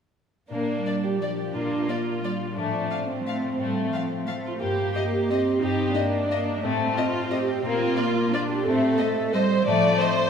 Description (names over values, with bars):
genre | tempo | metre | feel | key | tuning
classical | 177 BPM | 3/4 | uneven beats, rubato | Bb major | A4 = 440 Hz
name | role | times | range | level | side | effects
warm chamber violin section | second line | 0.5-10.0 s | A3 to G4 | -30 LUFS | left 4 dB | none
warm chamber viola section | accompaniment | 0.5-10.3 s | C4 to D5 | -26 LUFS | right 2 dB | none
concert harp | arpeggios | 0.5-10.3 s | G2 to F5 | -31 LUFS | left 4 dB | none
warm studio cello section | bass | 0.5-10.3 s | F3 to D4 | -27 LUFS | right 2 dB | none
warm chamber violin section | melody | 0.9-10.1 s | D5 to F5 | -34 LUFS | left 5 dB | none
room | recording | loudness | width
wet concert hall reverb, RT60 2.2 s | recorded in a church or concert hall | -22 LUFS | side -7 dB against mid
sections
0.5-10.3 A section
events
none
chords
0.5 Bb; 2.6 F/A; 4.6 Eb/G; 6.6 F7/A; 7.6 Bb; 8.7 F7/A